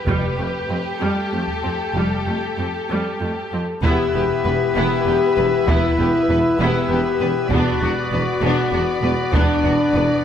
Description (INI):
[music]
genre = cinematic, epic orchestral film score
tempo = 65 BPM (dotted quarters)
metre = 6/8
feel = straight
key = E minor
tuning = A4 = 442 Hz
[part]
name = warm symphonic violin section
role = melody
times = 0.0-10.2 s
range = A4 to D5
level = -30 LUFS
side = left 2 dB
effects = none
[part]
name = warm symphonic violin section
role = second line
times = 0.0-10.0 s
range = D4 to B4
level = -27 LUFS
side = left 1 dB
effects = none
[part]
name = rich symphonic viola section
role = accompaniment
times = 0.1-10.0 s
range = G3 to C4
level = -27 LUFS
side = right 1 dB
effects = none
[part]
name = warm French horn section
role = sustained chords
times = 0.1-10.2 s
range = A3 to A4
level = -21 LUFS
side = left 4 dB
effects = none
[part]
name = rich symphonic cello section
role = bass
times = 0.1-10.0 s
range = E2 to F2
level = -27 LUFS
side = right 2 dB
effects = none
[part]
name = warm symphonic double bass section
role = bass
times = 0.1-10.0 s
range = E1 to F1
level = -27 LUFS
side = right 4 dB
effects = none
[part]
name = taiko ensemble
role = drums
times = 0.1-9.9 s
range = none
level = -24 LUFS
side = equal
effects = none
[part]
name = pipe organ, cornet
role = sustained chords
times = 3.8-10.2 s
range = B3 to E5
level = -25 LUFS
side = left 1 dB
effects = none
[part]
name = mellow tuba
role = bass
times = 3.8-10.1 s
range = E1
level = -27 LUFS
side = right 4 dB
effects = none
[sound]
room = moderate scoring stage reverb, RT60 2.0 s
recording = none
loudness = -17 LUFS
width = side -9 dB against mid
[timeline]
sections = 0.0-3.8 A section; 3.8-10.2 B section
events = build-up 0.0-3.8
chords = 0.1 Fadd9; 3.8 Em; 7.5 Bm/E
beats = | 0.08 1.01 | 1.95 2.90 | 3.84 4.76 | 5.68 6.60 | 7.52 8.43 | 9.34